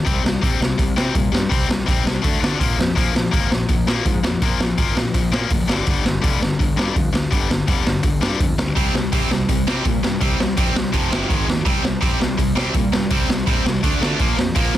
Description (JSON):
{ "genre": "punk rock", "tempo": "166 BPM", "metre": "4/4", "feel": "straight", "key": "unclear", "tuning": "A4 = 439 Hz", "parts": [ { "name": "tight distorted guitar", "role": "riff", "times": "0.0-14.8 s", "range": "F2 to D4", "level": "-22 LUFS", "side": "left 6 dB", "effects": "distortion" }, { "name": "fuzz picked electric bass", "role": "bass", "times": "0.1-14.8 s", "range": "F1 to D3", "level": "-25 LUFS", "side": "right 1 dB", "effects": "overdrive" }, { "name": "raw garage drum kit", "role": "drums", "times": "0.1-14.8 s", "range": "hi-hat, kick drum, snare drum", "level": "-20 LUFS", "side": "right 1 dB", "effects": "none" }, { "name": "cranked stack guitar", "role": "riff", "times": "8.8-14.8 s", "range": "F2 to D4", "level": "-24 LUFS", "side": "right 18 dB", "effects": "overdrive" } ], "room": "little or no reverb", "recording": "dense, heavily limited modern master", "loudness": "-17 LUFS", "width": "side -13 dB against mid", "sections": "0.0-14.8 A section", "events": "none", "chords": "0.1 C5; 2.2 D5; 2.6 Bb5; 5.7 G5; 8.8 C5; 10.9 F5; 11.3 Ab5; 11.7 C5; 13.8 D5; 14.2 Bb5" }